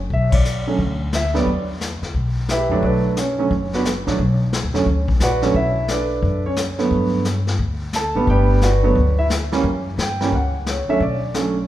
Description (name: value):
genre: jazz piano trio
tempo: 176 BPM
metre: 4/4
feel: swing 64% on 8ths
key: B minor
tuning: A4 = 438 Hz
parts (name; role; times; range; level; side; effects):
- upright bass; bass; 0.0-11.6 s; F#1 to G2; -21 LUFS; left 1 dB; none
- clear concert grand piano; melody; 0.1-11.5 s; D3 to A5; -20 LUFS; right 2 dB; none
- vintage brush drum kit; drums; 0.1-11.7 s; brushed snare drum, hi-hat, kick drum, ride cymbal, snare drum; -24 LUFS; left 2 dB; none
room: wet recital hall reverb, RT60 1.7 s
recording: recorded in a church or concert hall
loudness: -17 LUFS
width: side -13 dB against mid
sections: 0.0-11.7 A section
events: band accent 0.3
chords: 0.0 Bm; 1.5 Em7; 2.8 Bm7; 6.9 Gmaj7; 9.6 F#5; 11.0 Bm7